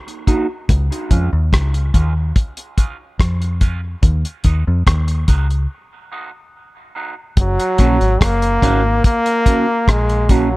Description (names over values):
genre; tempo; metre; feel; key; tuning
dub reggae; 72 BPM; 4/4; straight; unclear; A4 = 440 Hz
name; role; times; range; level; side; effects
cloth-damped thuddy drum kit; drums; 0.1-10.5 s; hi-hat, kick drum, rim click; -15 LUFS; equal; none
mellow electric guitar; accompaniment; 0.3-10.5 s; Ab3 to Gb4; -24 LUFS; right 3 dB; phaser, high-pass filter, low-pass filter, dub echo
deep dub fingered electric bass; bass; 0.7-10.6 s; Gb1 to F2; -16 LUFS; equal; none
bright trombone; melody; 7.4-10.6 s; Gb3 to Bb3; -17 LUFS; equal; dub echo
room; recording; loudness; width
light reverb, small room reverb; none; -14 LUFS; side -20 dB against mid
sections
0.0-7.4 A section; 7.4-10.6 B section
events
filter sweep on clean electric guitar 0.0-7.4; break 5.7-7.4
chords
0.0 Ebm; 0.7 Db; 4.0 Ebm; 7.4 Gb